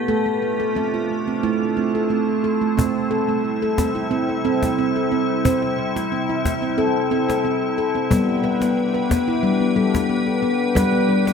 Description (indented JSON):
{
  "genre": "world meditative, meditative tuned percussion",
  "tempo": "90 BPM",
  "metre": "4/4",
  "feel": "straight",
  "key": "unclear",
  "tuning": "A4 = 436 Hz",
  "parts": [
    { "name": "icy glass pad", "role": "sustained chords", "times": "0.0-11.3 s", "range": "C3 to B4", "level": "-24 LUFS", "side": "left 1 dB", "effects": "chorus, built-in reverb" },
    { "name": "handpan", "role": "arpeggios", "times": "0.0-11.3 s", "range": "G3 to C5", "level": "-19 LUFS", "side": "equal", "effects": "tape echo" },
    { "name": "cajon", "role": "percussion", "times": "2.8-11.3 s", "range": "none", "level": "-24 LUFS", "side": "left 1 dB", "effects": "none" }
  ],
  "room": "wet echo chamber reverb, RT60 2.3 s",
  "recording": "none",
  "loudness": "-18 LUFS",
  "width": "side -6 dB against mid",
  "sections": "0.0-2.8 A section; 2.8-11.3 B section",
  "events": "none",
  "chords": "0.1 Dm/A; 1.4 Am; 2.8 C; 8.1 G",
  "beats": "| 0.09 0.76 1.43 2.11 | 2.78 3.45 4.12 4.78 | 5.45 6.12 6.78 7.45 | 8.11 8.77 9.43 10.10 | 10.76"
}